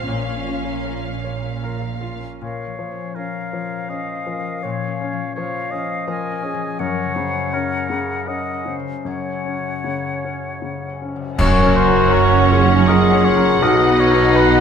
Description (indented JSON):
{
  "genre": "cinematic, emotional film score for orchestra",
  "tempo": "75-84 BPM",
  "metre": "3/4",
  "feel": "rubato",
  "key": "Bb minor",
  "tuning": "A4 = 440 Hz",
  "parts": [
    { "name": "muted symphonic violin section", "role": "melody", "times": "0.0-2.2, 11.4-14.6 s", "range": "F5 to Gb5", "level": "-25 LUFS", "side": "left 4 dB", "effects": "none" },
    { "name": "muted studio violin section", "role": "second line", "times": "0.0-1.6, 11.4-14.6 s", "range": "Db4 to Eb5", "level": "-27 LUFS", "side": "left 3 dB", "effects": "none" },
    { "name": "clear grand piano", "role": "accompaniment", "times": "0.0-14.6 s", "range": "Cb2 to Db5", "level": "-25 LUFS", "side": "left 3 dB", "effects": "none" },
    { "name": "muted studio viola section", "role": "accompaniment", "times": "0.0-2.4, 11.4-14.6 s", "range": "Bb3 to Bb4", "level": "-27 LUFS", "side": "right 3 dB", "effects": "none" },
    { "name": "concert harp", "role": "arpeggios", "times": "0.0-14.6 s", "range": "Gb2 to Bb5", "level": "-29 LUFS", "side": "left 11 dB", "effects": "none" },
    { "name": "muted studio cello section", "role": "bass", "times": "0.0-2.2, 11.4-14.6 s", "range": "Gb2 to Cb3", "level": "-21 LUFS", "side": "right 6 dB", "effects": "none" },
    { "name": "muted studio double bass section", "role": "bass", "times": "0.0-2.2, 11.4-14.6 s", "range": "Gb1 to Cb2", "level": "-22 LUFS", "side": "right 8 dB", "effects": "none" },
    { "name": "silver concert flute", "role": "second line", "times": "2.4-11.0 s", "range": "F5 to Ab5", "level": "-28 LUFS", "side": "left 4 dB", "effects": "none" },
    { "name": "warm clarinet", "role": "second line", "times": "2.4-14.6 s", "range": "Eb4 to Db5", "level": "-25 LUFS", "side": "equal", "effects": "none" },
    { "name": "warm oboe", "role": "second line", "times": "2.4-14.6 s", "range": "Bb4 to Eb5", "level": "-24 LUFS", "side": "right 1 dB", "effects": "none" },
    { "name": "cymbal swell, clash cymbals and concert bass drum", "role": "percussion", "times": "9.0-12.8 s", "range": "none", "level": "-24 LUFS", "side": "right 1 dB", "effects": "none" },
    { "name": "mellow French horn section", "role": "sustained chords", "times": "11.4-14.6 s", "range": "Gb4 to Bb4", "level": "-19 LUFS", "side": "left 6 dB", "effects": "none" }
  ],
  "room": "light reverb",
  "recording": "close, detailed microphones",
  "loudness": "-16 LUFS",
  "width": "side -7 dB against mid",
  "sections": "0.0-2.4 A section; 2.4-11.4 B section; 11.4-14.6 C section",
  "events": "band accent 11.4-12.1",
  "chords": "0.1 Bbm; 6.8 Gb; 13.6 Cb",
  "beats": "| 0.08 0.86 1.63 | 2.42 3.16 3.90 | 4.64 5.36 6.07 | 6.80 7.53 8.27 | 9.05 9.84 10.62 | 11.39 12.13 12.87 | 13.62 14.35"
}